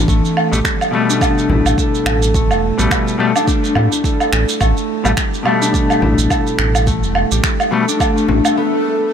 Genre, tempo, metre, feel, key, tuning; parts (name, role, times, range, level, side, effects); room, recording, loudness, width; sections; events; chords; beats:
organic downtempo; 106 BPM; 4/4; swing 57% on 16ths; A4 = 439 Hz
concert harp; arpeggios; 0.0-9.1 s; E3 to A4; -18 LUFS; left 1 dB; ping-pong delay
round analog bass; bass; 0.0-8.4 s; E1 to A2; -16 LUFS; right 1 dB
electronic kick drum; drums; 0.1-8.1 s; -19 LUFS; right 1 dB
electronic shaker, woodblock and finger snaps; drums; 0.1-8.5 s; -19 LUFS; right 3 dB
semi-hollow electric guitar; accompaniment; 0.5-7.9 s; B2 to A3; -21 LUFS; left 3 dB; warbly pitch drift, sidechain pumping, ping-pong delay
frame drum; percussion; 1.5-8.4 s; -27 LUFS; left 4 dB
swell; sound effects; 8.2-9.1 s; -23 LUFS; left 2 dB
low Native American-style wooden flute; melody; 8.6-9.1 s; A4; -18 LUFS; right 1 dB
light reverb; -13 LUFS; side -8 dB against mid
0.0-9.1 A section
swell 8.2-9.1; break 8.6-9.1
0.1 Gadd9
| 0.08 0.65 1.21 1.78 | 2.34 2.91 3.48 4.04 | 4.61 5.17 5.74 6.31 | 6.87 7.44 8.00 8.57